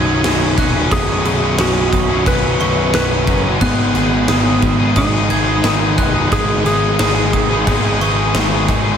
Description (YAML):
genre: post-rock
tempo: 89 BPM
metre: 4/4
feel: straight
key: B major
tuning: A4 = 440 Hz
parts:
  - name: clean lap steel guitar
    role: melody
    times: 0.0-8.0 s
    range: B3 to B4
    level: -20 LUFS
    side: equal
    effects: ping-pong delay
  - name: glockenspiel with brass mallets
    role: arpeggios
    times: 0.0-8.7 s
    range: C#6 to G#6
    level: -26 LUFS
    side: right 4 dB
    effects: ping-pong delay
  - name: cranked stack guitar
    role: riff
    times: 0.0-9.0 s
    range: B1 to G#4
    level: -19 LUFS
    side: left 10 dB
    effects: overdrive
  - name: crunchy overdriven guitar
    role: riff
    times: 0.0-9.0 s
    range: B1 to G#4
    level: -21 LUFS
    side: right 9 dB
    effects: ensemble chorus
  - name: fuzz picked electric bass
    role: bass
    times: 0.0-9.0 s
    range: B0 to G#1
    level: -19 LUFS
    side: equal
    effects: overdrive
  - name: huge arena drum kit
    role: drums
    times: 0.2-8.8 s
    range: crash cymbal, kick drum, snare drum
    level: -19 LUFS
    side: equal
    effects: none
room: moderate plate reverb, RT60 2.4 s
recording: dreamy mix soaked in reverb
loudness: -12 LUFS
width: side -8 dB against mid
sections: 0.0-9.0 A section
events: none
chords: 0.0 Badd9